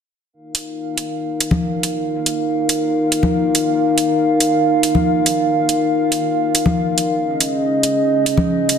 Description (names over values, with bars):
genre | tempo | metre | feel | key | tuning
deep dubstep | 140 BPM | 4/4 | half-time | unclear | A4 = 441 Hz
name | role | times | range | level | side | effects
dark analog pad | sustained chords | 0.3-8.8 s | Db4 to F5 | -16 LUFS | equal | wide subtle chorus
electronic hi-hat | drums | 0.5-8.8 s | none | -18 LUFS | right 2 dB | studio reverb
congas | percussion | 1.5-8.5 s | none | -20 LUFS | left 2 dB | dub echo
room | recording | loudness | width
moderate echo chamber reverb, RT60 1.7 s, studio reverb | dense, heavily limited modern master | -15 LUFS | side -7 dB against mid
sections
0.3-8.8 A section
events
none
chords
0.3 Eb5; 7.2 Dbsus2